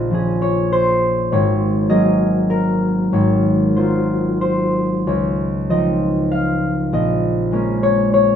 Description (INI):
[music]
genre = classical, solo harp piece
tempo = 96 BPM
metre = 3/4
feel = uneven beats, rubato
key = unclear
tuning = A4 = 440 Hz
[part]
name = concert harp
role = solo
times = 0.0-8.4 s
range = Ab1 to F5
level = -15 LUFS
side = equal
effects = none
[sound]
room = light reverb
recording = close, detailed microphones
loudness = -15 LUFS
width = side -8 dB against mid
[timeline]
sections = 0.0-8.4 A section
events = none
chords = 0.0 Bbm7; 1.3 Ab11; 3.1 Ab13; 5.1 Dbmaj9; 6.9 Bbm7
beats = 0.10 0.71 | 1.30 1.90 2.51 | 3.14 3.78 4.43 | 5.09 5.72 6.33 | 6.93 7.53 8.14